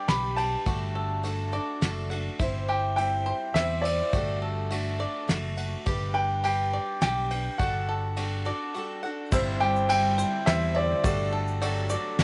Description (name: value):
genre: indie folk with a building arrangement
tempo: 104 BPM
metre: 3/4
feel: straight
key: unclear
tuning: A4 = 440 Hz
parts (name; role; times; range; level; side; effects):
- bright upright piano; melody; 0.0-11.3 s; D5 to B5; -30 LUFS; equal; none
- picked twelve-string acoustic guitar; accompaniment; 0.0-12.2 s; G3 to C5; -37 LUFS; equal; none
- bluegrass banjo; arpeggios; 0.0-12.2 s; E4 to G5; -38 LUFS; equal; none
- fingered electric bass; bass; 0.1-12.2 s; F#1 to E2; -33 LUFS; equal; none
- soft brush drum kit; drums; 0.1-12.2 s; crash cymbal, kick drum, ride cymbal, snare drum; -34 LUFS; equal; none
- bright grand piano; accompaniment; 9.3-12.2 s; G1 to E5; -37 LUFS; equal; none
- tube shaker; percussion; 9.3-12.0 s; none; -46 LUFS; equal; none
- warm cello; second line; 9.6-11.3 s; D3 to G3; -37 LUFS; equal; none
room: light reverb, small room reverb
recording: nothing above 11.0 kHz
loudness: -27 LUFS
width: mono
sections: 0.0-9.3 A section; 9.3-12.2 A section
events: break 8.7-9.3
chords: 0.0 G; 0.7 D/G; 2.4 C/G; 4.1 D/G; 5.9 G; 7.6 D/G; 9.3 C/G; 11.0 D/G